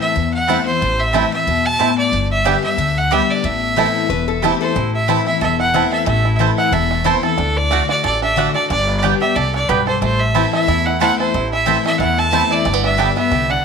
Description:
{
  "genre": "bluegrass",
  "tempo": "182 BPM",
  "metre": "4/4",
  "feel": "swing 55% on 8ths",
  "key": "A dorian",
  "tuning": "A4 = 439 Hz",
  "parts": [
    { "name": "clear fiddle", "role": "melody", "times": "0.0-13.6 s", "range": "A4 to A5", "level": "-18 LUFS", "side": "right 1 dB", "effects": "none" },
    { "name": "picked steel-string acoustic guitar", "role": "accompaniment", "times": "0.0-13.6 s", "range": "E2 to G4", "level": "-20 LUFS", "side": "left 11 dB", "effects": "none" },
    { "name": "upright bass", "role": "bass", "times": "0.2-13.6 s", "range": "E1 to E2", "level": "-22 LUFS", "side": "equal", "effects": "none" },
    { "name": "bluegrass banjo", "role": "arpeggios", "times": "0.5-13.6 s", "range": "A3 to A4", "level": "-23 LUFS", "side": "right 12 dB", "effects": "none" },
    { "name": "mandolin", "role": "stabs", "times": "0.5-13.1 s", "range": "A3 to A5", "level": "-22 LUFS", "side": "right 11 dB", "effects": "none" },
    { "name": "lap resonator guitar", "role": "second line", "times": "3.8-4.8 s", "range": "G4 to B4", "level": "-25 LUFS", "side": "left 11 dB", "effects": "none" }
  ],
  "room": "light reverb, small room ambience",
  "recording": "1960s-style stereo with parts hard left and right",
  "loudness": "-14 LUFS",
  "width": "side -6 dB against mid",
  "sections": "0.0-4.8 A section; 4.8-13.6 A section",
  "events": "none",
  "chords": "0.0 Am; 2.1 G; 3.4 Am; 7.4 D; 8.7 G; 10.0 Am; 12.7 G",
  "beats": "0.16 0.49 | 0.82 1.14 1.47 1.80 | 2.13 2.46 2.78 3.11 | 3.44 3.77 4.10 4.43 | 4.75 5.08 5.41 5.74 | 6.07 6.40 6.73 7.06 | 7.39 7.72 8.04 8.37 | 8.70 9.03 9.36 9.69 | 10.02 10.35 10.68 11.01 | 11.34 11.67 12.00 12.33 | 12.66 12.98 13.31 13.64"
}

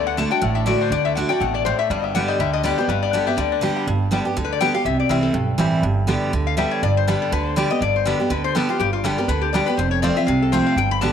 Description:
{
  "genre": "bluegrass",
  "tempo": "244 BPM",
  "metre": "4/4",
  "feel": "swing 56% on 8ths",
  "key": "G major, G mixolydian from 3.9 s",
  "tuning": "A4 = 440 Hz",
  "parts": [
    { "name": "bluegrass banjo", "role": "melody", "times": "0.0-11.1 s", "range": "G3 to G4", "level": "-31 LUFS", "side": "left 10 dB", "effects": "none" },
    { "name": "lap resonator guitar", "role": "melody", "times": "0.0-11.1 s", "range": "F4 to B5", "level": "-23 LUFS", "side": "left 10 dB", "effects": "none" },
    { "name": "picked steel-string acoustic guitar", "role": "accompaniment", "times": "0.0-11.1 s", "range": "F2 to G4", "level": "-21 LUFS", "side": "right 2 dB", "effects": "none" },
    { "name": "upright bass", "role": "bass", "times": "0.0-11.1 s", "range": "F1 to D2", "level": "-25 LUFS", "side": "right 2 dB", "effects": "none" }
  ],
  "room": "moderate plate reverb, RT60 2.7 s",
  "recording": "1960s-style stereo",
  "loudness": "-18 LUFS",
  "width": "side -8 dB against mid",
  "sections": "0.0-3.9 A section; 3.9-11.1 B section",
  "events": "none",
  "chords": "0.0 D; 1.9 G; 4.9 C; 5.8 G; 9.8 F",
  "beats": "0.17 0.42 0.67 | 0.92 1.16 1.41 1.65 | 1.90 2.15 2.39 2.64 | 2.89 3.13 3.38 3.62 | 3.87 4.12 4.36 4.61 | 4.86 5.10 5.35 5.59 | 5.84 6.09 6.33 6.58 | 6.83 7.07 7.32 7.56 | 7.81 8.06 8.30 8.55 | 8.80 9.04 9.29 9.54 | 9.78 10.03 10.27 10.52 | 10.77 11.01"
}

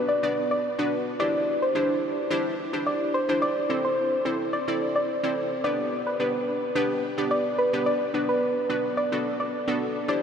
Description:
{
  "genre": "pop",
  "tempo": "108 BPM",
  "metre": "4/4",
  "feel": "straight",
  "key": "unclear",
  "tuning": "A4 = 440 Hz",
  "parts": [
    { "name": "glassy wavetable pluck", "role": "accompaniment", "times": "0.0-10.2 s", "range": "B3 to D5", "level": "-27 LUFS", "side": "equal", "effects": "chorus" },
    { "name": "soft round pluck", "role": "melody", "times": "0.1-10.2 s", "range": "B4 to D5", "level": "-26 LUFS", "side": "equal", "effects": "chorus, analog delay" }
  ],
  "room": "wet huge ambient reverb, RT60 7.5 s",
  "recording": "dreamy mix soaked in reverb",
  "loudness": "-23 LUFS",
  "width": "side -7 dB against mid",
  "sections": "0.0-10.2 A section",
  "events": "none",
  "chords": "0.0 Bm; 1.2 Cadd9; 3.4 Am; 5.6 G; 7.9 Bm",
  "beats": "0.09 0.64 | 1.20 1.75 2.31 2.87 | 3.42 3.98 4.53 5.09 | 5.64 6.20 6.75 7.31 | 7.87 8.42 8.98 9.53 | 10.09"
}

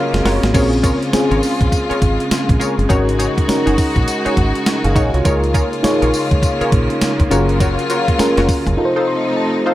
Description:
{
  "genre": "R&B, new jack swing",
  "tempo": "102 BPM",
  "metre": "4/4",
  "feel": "swing 62% on 16ths",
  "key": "Bb minor",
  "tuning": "A4 = 443 Hz",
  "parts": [
    { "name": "mellow FM electric piano", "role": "accompaniment", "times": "0.0-9.7 s", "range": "Bb3 to C6", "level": "-18 LUFS", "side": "equal", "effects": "chorus" },
    { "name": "rich studio string section", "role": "sustained chords", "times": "0.0-9.7 s", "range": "C3 to Gb4", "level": "-21 LUFS", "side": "left 1 dB", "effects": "none" },
    { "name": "deep dub fingered electric bass", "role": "bass", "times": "0.1-8.8 s", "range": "F1 to Db2", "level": "-18 LUFS", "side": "equal", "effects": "none" },
    { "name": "clean 12-bit digital drum machine", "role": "drums", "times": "0.1-8.8 s", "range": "crash cymbal, hi-hat, kick drum, snare drum, tambourine", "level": "-18 LUFS", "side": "equal", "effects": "gated reverb" },
    { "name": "funky polysynth comp", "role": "stabs", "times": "0.2-9.7 s", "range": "Eb4 to Db5", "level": "-23 LUFS", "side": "left 1 dB", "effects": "chorus" }
  ],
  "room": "light reverb, digital ambience",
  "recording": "none",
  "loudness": "-13 LUFS",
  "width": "side -14 dB against mid",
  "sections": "0.0-9.7 A section",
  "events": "drum fill 0.0-0.5; FM electric piano fill 0.0-0.5, 8.8-9.7",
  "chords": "0.0 Gbmaj7; 0.5 Bbm7; 2.9 Ab7sus4; 5.2 Db6; 7.3 Gbmaj7; 8.8 F7",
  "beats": "| 0.55 1.13 1.72 2.31 | 2.90 3.49 4.07 4.66 | 5.25 5.84 6.43 7.01 | 7.60 8.19 8.78 9.37"
}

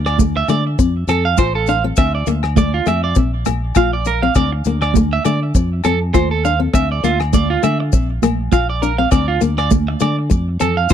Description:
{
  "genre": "highlife guitar band",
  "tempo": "101 BPM",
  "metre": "4/4",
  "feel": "swing 55% on 16ths",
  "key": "unclear",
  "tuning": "A4 = 440 Hz",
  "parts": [
    { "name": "fingerpicked steel-string acoustic guitar", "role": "accompaniment", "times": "0.0-10.9 s", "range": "A3 to F4", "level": "-20 LUFS", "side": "left 9 dB", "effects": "none" },
    { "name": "fingered electric bass", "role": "bass", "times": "0.0-10.9 s", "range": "A1 to D3", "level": "-19 LUFS", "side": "equal", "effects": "none" },
    { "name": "electric guitar at the edge of break-up", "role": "arpeggios", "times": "0.1-10.9 s", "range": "F4 to F5", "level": "-20 LUFS", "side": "right 8 dB", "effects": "tape echo" },
    { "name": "damped 70s drum kit", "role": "drums", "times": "0.1-10.9 s", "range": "hi-hat, kick drum, rim click", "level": "-17 LUFS", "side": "equal", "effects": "none" },
    { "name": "agogo bells", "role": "percussion", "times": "0.1-10.8 s", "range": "none", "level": "-28 LUFS", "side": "left 25 dB", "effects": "none" },
    { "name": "congas", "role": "percussion", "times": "0.2-10.9 s", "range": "none", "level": "-22 LUFS", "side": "right 18 dB", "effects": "none" },
    { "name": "maracas", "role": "percussion", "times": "0.2-10.9 s", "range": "none", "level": "-30 LUFS", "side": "left 27 dB", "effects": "none" }
  ],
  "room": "little or no reverb",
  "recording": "dry, close 1970s-style studio recording",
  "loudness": "-14 LUFS",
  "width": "side -9 dB against mid",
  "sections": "0.0-10.9 A section",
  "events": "none",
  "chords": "0.0 Dsus2; 0.8 F; 2.0 Dmadd9; 3.2 Bb5; 4.4 D5; 5.5 F; 6.7 Dmadd9; 7.9 Bb; 9.1 D5; 10.3 F",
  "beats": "0.19 0.79 1.38 | 1.98 2.57 3.17 3.76 | 4.36 4.95 5.55 6.14 | 6.74 7.33 7.93 8.53 | 9.12 9.72 10.31 10.91"
}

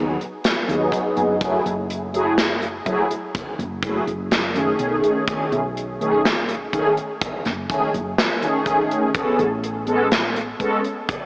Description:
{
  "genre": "vaporwave",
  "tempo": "62 BPM",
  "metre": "4/4",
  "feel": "straight",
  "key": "unclear",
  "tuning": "A4 = 440 Hz",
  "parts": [
    { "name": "mellow synth brass", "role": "accompaniment", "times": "0.0-10.8 s", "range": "D#3 to A4", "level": "-20 LUFS", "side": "equal", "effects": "phaser, ensemble chorus, tape echo" },
    { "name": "woody fretless electric bass", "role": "bass", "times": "0.0-11.1 s", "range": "F#1 to D#2", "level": "-29 LUFS", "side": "equal", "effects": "none" },
    { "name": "gated 80s drum kit", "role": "drums", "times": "0.2-11.3 s", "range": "hi-hat, snare drum", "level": "-22 LUFS", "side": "equal", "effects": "gated reverb" },
    { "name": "kick drum", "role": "drums", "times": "0.9-11.3 s", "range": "none", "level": "-27 LUFS", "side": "equal", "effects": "none" }
  ],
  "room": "moderate huge ambient reverb, RT60 4.5 s",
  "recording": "cassette tape, small speaker sound",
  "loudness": "-19 LUFS",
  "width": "side -28 dB against mid",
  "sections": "0.0-11.3 A section",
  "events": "none",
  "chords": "0.0 G#m7; 1.4 F#m9; 4.8 B13; 9.2 Amaj9",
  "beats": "0.44 | 1.41 2.38 3.35 4.31 | 5.28 6.25 7.22 8.19 | 9.15 10.12 11.09"
}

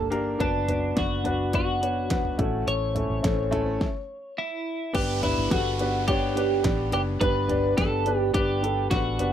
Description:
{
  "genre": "piano-driven pop",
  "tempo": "106 BPM",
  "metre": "4/4",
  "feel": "straight",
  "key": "unclear",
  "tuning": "A4 = 439 Hz",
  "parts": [
    { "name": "twelve-string electric guitar", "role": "melody", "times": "0.0-9.3 s", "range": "D4 to C#5", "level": "-28 LUFS", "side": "right 1 dB", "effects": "analog chorus" },
    { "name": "warm concert grand piano", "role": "accompaniment", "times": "0.0-9.3 s", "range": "G2 to D5", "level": "-28 LUFS", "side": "left 2 dB", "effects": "none" },
    { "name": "vintage muted fingered electric bass", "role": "bass", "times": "0.0-9.3 s", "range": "E1 to A1", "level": "-30 LUFS", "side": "equal", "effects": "none" },
    { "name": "pop drum kit", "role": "drums", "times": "0.1-9.3 s", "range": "crash cymbal, hi-hat, kick drum, snare drum, toms", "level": "-28 LUFS", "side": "equal", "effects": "overdrive" },
    { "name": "swell and downlifter", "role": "sound effects", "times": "2.9-9.3 s", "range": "none", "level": "-40 LUFS", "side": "right 1 dB", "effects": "none" }
  ],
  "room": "light reverb",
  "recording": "none",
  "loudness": "-23 LUFS",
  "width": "side -10 dB against mid",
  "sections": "0.0-4.9 A section; 4.9-9.3 B section",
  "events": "stop 3.8-4.9",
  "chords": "0.4 Bm/F#; 2.4 A; 4.9 G",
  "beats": "| 0.41 0.97 1.54 2.11 | 2.68 3.24 3.81 4.38 | 4.95 5.51 6.08 6.65 | 7.21 7.78 8.35 8.91"
}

